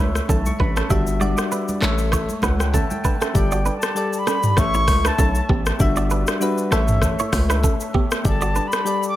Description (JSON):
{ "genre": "afrobeats", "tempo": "98 BPM", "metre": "4/4", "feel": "swing 55% on 16ths", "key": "unclear", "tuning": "A4 = 441 Hz", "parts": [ { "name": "soft electric-piano-like synth keys", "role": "accompaniment", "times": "0.0-9.2 s", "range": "G3 to C#6", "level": "-24 LUFS", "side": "left 2 dB", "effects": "chorus" }, { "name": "clean electric guitar", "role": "riff", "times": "0.0-8.7 s", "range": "B3 to E5", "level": "-27 LUFS", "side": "right 6 dB", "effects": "spring reverb, digital delay" }, { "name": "hard-hitting 808-style bass", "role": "bass", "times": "0.0-8.6 s", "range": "G1 to C#2", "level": "-21 LUFS", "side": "equal", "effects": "none" }, { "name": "congas", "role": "percussion", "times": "0.1-3.0 s", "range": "none", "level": "-30 LUFS", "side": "right 3 dB", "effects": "none" }, { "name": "afro-pop drum kit", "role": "drums", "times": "0.2-9.2 s", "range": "handclaps, hi-hat, kick drum, rim click, shaker, toms", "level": "-22 LUFS", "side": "equal", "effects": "none" }, { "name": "silver concert flute", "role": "melody", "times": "3.4-9.2 s", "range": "G5 to D6", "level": "-24 LUFS", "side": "left 1 dB", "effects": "digital delay" } ], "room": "little or no reverb", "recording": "none", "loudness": "-17 LUFS", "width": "side -14 dB against mid", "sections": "0.0-3.4 A section; 3.4-9.2 B section", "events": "synth keys fill 1.5-3.4", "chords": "0.0 A; 0.9 Em7/G; 1.8 A; 3.4 Gsus2; 4.6 A; 5.8 Em7/G; 6.7 A; 8.2 Gsus2", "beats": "0.29 | 0.90 1.51 2.13 2.74 | 3.35 3.96 4.58 5.19 | 5.80 6.41 7.03 7.64 | 8.25 8.86" }